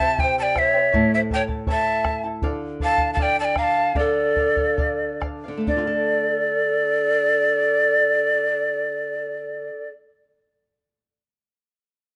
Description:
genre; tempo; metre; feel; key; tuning
andean folk, Andean ensemble; 64-81 BPM; 2/4; straight; D minor; A4 = 440 Hz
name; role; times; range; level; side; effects
breathy bright large quena; melody; 0.0-9.9 s; D5 to Bb5; -23 LUFS; equal; plate reverb
mellow pan flute; second line; 0.0-9.9 s; A4 to F5; -27 LUFS; equal; plate reverb
charango; accompaniment; 0.0-10.0 s; E4 to A5; -36 LUFS; equal; plate reverb
flamenco guitar; accompaniment; 0.0-10.1 s; A2 to A4; -32 LUFS; equal; none
bombo; percussion; 0.0-6.1 s; none; -30 LUFS; equal; none
room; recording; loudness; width
moderate small room reverb, RT60 0.5 s; rough home demo mix, nothing above 10.7 kHz; -21 LUFS; mono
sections
0.0-5.7 A section; 5.7-9.4 B section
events
slowing down 2.4-5.7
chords
0.0 C; 0.9 A; 2.4 Dm

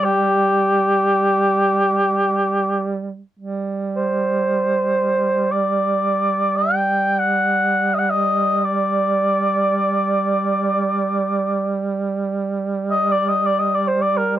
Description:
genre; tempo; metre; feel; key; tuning
caucasian folk, Caucasian lament; free time; none; none; unclear; A4 = 440 Hz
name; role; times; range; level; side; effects
mellow cor anglais; melody; 0.0-14.4 s; G4 to G5; -18 LUFS; left 1 dB; none
warm duduk; drone; 0.0-14.4 s; G3; -22 LUFS; right 4 dB; none
room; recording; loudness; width
little or no reverb; dry, close 1970s-style studio recording; -17 LUFS; side -12 dB against mid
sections
0.0-3.4 A section; 3.4-14.4 A section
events
none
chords
none

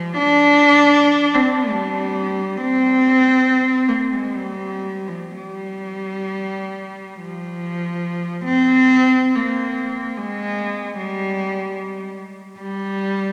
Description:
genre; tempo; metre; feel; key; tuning
classical, free, expressive piece for unaccompanied cello; free time; none; none; unclear; A4 = 436 Hz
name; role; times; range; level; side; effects
warm cello; solo; 0.0-13.3 s; F3 to D4; -19 LUFS; equal; none
room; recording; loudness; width
wet cathedral reverb, RT60 4.5 s; none; -18 LUFS; mono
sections
0.0-8.5 A section; 8.5-13.3 B section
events
none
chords
none

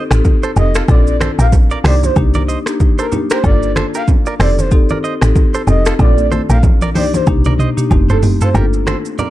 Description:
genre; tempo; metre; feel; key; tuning
afrobeats; 94 BPM; 4/4; swing 58% on 16ths; unclear; A4 = 440 Hz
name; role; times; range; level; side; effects
direct-recorded clean electric guitar; riff; 0.0-9.3 s; F4 to Eb5; -24 LUFS; right 5 dB; tape echo
marimba with medium mallets; accompaniment; 0.1-9.3 s; A3 to A4; -20 LUFS; left 3 dB; none
woody log drum bass; bass; 0.1-9.0 s; F1 to C2; -14 LUFS; equal; none
afro-pop drum kit; drums; 0.1-9.3 s; finger snaps, hi-hat, kick drum, rim click, shaker, toms; -14 LUFS; equal; none
congas; percussion; 0.2-9.3 s; none; -23 LUFS; right 2 dB; none
breathy flute-like synth lead; melody; 0.6-8.5 s; A4 to F5; -22 LUFS; right 1 dB; chorus, phaser, tremolo, tape echo
room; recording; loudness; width
little or no reverb; dark, warm production; -11 LUFS; side -15 dB against mid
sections
0.0-8.5 A section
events
drum fill 6.0-8.5; break 8.5-9.3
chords
0.0 F7; 0.9 Bbmaj7; 1.8 Cm7; 3.4 Gm7; 4.4 F7; 6.0 Bbmaj7; 7.0 Cm7; 7.9 F7; 8.5 Gm7

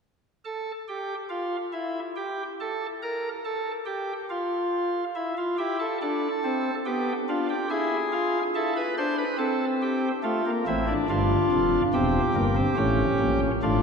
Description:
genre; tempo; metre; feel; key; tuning
classical, baroque-style 4-part fugue for pipe organ; 70 BPM; 3/4; straight; unclear; A4 = 441 Hz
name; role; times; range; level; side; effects
pipe organ, cornet; solo; 0.4-13.8 s; E1 to C5; -24 LUFS; equal; none
room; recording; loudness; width
wet cathedral reverb, RT60 4.9 s; recorded in a church or concert hall; -24 LUFS; side -5 dB against mid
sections
0.0-13.8 A section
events
none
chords
0.0 N.C.; 5.2 Am/E; 6.9 Bdim; 7.7 E7; 9.4 Am/C; 10.2 Dm/A; 11.9 Edim; 12.8 A7

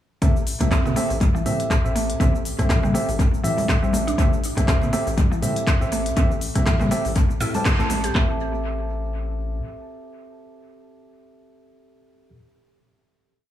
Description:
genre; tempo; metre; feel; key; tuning
afro house; 121 BPM; 4/4; swing 56% on 16ths; A minor pentatonic; A4 = 440 Hz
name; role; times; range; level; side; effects
mallet-like synth pluck; arpeggios; 0.2-8.4 s; E3 to G4; -28 LUFS; left 1 dB; chorus, sidechain pumping, analog delay
tine electric piano; stabs; 0.2-12.3 s; C4 to A5; -27 LUFS; right 2 dB; sidechain pumping, analog delay
round analog bass; bass; 0.2-9.6 s; A1 to A2; -27 LUFS; left 1 dB; sidechain pumping
afro-pop drum kit; drums; 0.2-8.3 s; handclaps, kick drum; -21 LUFS; equal; none
afro-pop drum kit; drums; 0.2-8.1 s; handclaps, hi-hat, rim click, shaker; -29 LUFS; left 1 dB; analog delay
congas; percussion; 0.2-8.0 s; none; -30 LUFS; right 1 dB; none
room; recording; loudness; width
light reverb, digital ambience; echo-heavy mix, small room ambience; -19 LUFS; side -12 dB against mid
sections
0.2-8.2 drop; 8.2-12.1 final chord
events
drop 0.2-8.2; band accent 7.7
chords
0.2 Am7

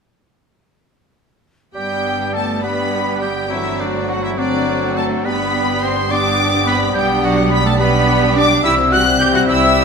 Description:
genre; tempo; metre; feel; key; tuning
quick classical-period movement for symphony orchestra; 70 BPM (dotted quarters); 6/8; rubato; G major; A4 = 440 Hz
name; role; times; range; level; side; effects
clear oboe; second line; 1.7-9.8 s; D4 to G5; -24 LUFS; right 1 dB; none
mellow clarinet; second line; 1.7-9.8 s; B3 to C4; -26 LUFS; left 1 dB; none
mellow French horn section; sustained chords; 1.7-9.8 s; F#3 to C4; -24 LUFS; left 7 dB; none
clear studio violin section; melody; 1.8-9.8 s; D5 to G6; -21 LUFS; left 2 dB; none
concert flute; second line; 1.8-9.8 s; D5 to G6; -24 LUFS; left 2 dB; none
warm chamber violin section; second line; 1.8-9.8 s; D4 to C5; -25 LUFS; left 2 dB; none
mellow bassoon; accompaniment; 1.8-9.8 s; F#3 to G3; -22 LUFS; right 3 dB; none
warm studio viola section; accompaniment; 1.8-9.8 s; E3 to E4; -26 LUFS; right 2 dB; none
rich chamber cello section; bass; 1.8-9.8 s; D3 to G4; -23 LUFS; right 2 dB; none
rich chamber double bass section; bass; 1.8-9.8 s; G1 to C2; -23 LUFS; right 3 dB; none
room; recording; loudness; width
moderate scoring stage reverb, RT60 1.9 s; minimal, uncompressed stereo recording; -14 LUFS; side -5 dB against mid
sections
1.8-9.8 A section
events
none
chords
1.8 G; 3.5 D7/G; 5.3 G; 6.9 G/B; 8.6 C

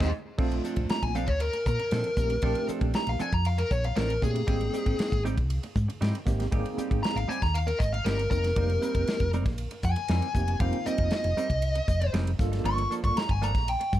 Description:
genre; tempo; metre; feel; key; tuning
electric jazz fusion; 117 BPM; 4/4; straight; Bb major; A4 = 441 Hz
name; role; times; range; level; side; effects
dark smooth lead guitar; melody; 0.0-13.9 s; Ab4 to Db6; -30 LUFS; left 1 dB; overdrive
overdriven tine electric piano; accompaniment; 0.0-13.2 s; A3 to G5; -34 LUFS; right 2 dB; fast tremolo, wide subtle chorus
semi-hollow electric guitar; stabs; 0.0-14.0 s; F3 to Bb4; -37 LUFS; right 5 dB; lush chorus
hollow-body short-scale fingered electric bass; bass; 0.0-14.0 s; F1 to Bb2; -28 LUFS; equal; none
modern studio drum kit; drums; 0.0-14.0 s; crash cymbal, hi-hat, kick drum, ride cymbal, snare drum; -31 LUFS; equal; none
room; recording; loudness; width
little or no reverb; dark, warm production; -25 LUFS; side -13 dB against mid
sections
0.4-14.0 A section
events
drum fill 0.0-0.4; band accent 0.0-0.4; lead electric guitar solo 0.4-14.0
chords
0.4 Bbmaj9; 4.5 Abmaj7; 8.6 F9sus4; 12.4 Gm9

